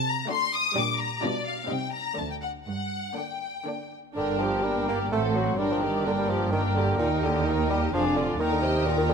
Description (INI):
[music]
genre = quick classical-period movement for symphony orchestra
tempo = 127 BPM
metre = 3/4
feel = rubato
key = G minor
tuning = A4 = 441 Hz
[part]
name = rich studio violin section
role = melody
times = 0.0-9.1 s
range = A4 to Eb6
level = -31 LUFS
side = left 5 dB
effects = none
[part]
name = rich studio cello section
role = bass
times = 0.0-9.1 s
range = D2 to C3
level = -31 LUFS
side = right 3 dB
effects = none
[part]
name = rich studio violin section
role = second line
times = 0.3-9.1 s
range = D4 to Eb5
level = -34 LUFS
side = left 4 dB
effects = none
[part]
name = rich studio viola section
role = accompaniment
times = 0.3-9.1 s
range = D3 to A4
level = -33 LUFS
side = right 1 dB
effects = none
[part]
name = mellow hollow silver concert flute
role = second line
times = 4.2-9.1 s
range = F#5 to Ab5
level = -33 LUFS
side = left 2 dB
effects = none
[part]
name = warm oboe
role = second line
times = 4.2-9.1 s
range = Bb4 to D5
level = -36 LUFS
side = right 3 dB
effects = none
[part]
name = clear bassoon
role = accompaniment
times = 4.2-9.1 s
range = Bb2 to Bb3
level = -28 LUFS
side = right 2 dB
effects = none
[part]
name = rich studio double bass section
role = bass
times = 4.2-9.1 s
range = F1 to Eb2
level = -32 LUFS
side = right 3 dB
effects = none
[part]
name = dark clarinet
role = second line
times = 4.6-9.1 s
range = Bb3 to F4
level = -33 LUFS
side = left 2 dB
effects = none
[sound]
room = moderate scoring stage reverb, RT60 1.9 s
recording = none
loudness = -24 LUFS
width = side -6 dB against mid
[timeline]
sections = 0.0-4.2 A section; 4.2-9.1 A section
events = none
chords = 0.0 D7/C; 0.8 Gm/Bb; 1.2 G7/B; 1.7 Cm; 2.2 D5; 2.7 Gm; 5.1 F#dim/A; 5.6 Gm; 7.0 Eb; 7.9 Ddim/F; 8.4 Eb